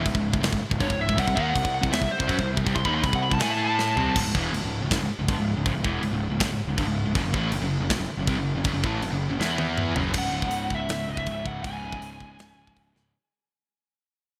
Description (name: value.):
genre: heavy metal.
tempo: 160 BPM.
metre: 4/4.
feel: straight.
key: C# harmonic minor.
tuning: A4 = 441 Hz.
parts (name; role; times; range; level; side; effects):
distorted electric guitar; riff; 0.0-13.1 s; C#2 to A4; -33 LUFS; equal; distortion.
fuzz guitar; riff; 0.0-4.2, 7.2-10.1 s; C#2 to A4; -35 LUFS; equal; none.
sludgy distorted guitar; riff; 0.0-13.1 s; C#2 to A4; -34 LUFS; equal; overdrive.
fuzz picked electric bass; bass; 0.0-13.1 s; C#1 to A2; -33 LUFS; equal; overdrive.
tight metal drum kit; drums; 0.1-13.0 s; crash cymbal, hi-hat, kick drum, snare drum, toms; -31 LUFS; equal; none.
high-gain lead guitar; melody; 0.8-4.2, 10.2-12.9 s; C5 to C6; -31 LUFS; equal; distortion, digital delay.
room: moderate lush hall reverb, RT60 1.9 s, small room ambience.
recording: bright 1980s-style digital production.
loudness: -25 LUFS.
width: mono.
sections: 0.0-4.2 A section; 4.2-10.1 B section; 10.1-13.1 C section.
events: lead electric guitar solo 0.0-4.2; drum fill 3.8-4.2, 9.4-10.1, 12.9; fade-out 10.1-13.1.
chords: 0.0 C#5; 1.2 C5; 3.4 A5; 4.0 C5; 4.2 C#m; 7.2 F#5; 9.4 E5; 10.0 F#5; 10.1 C#m.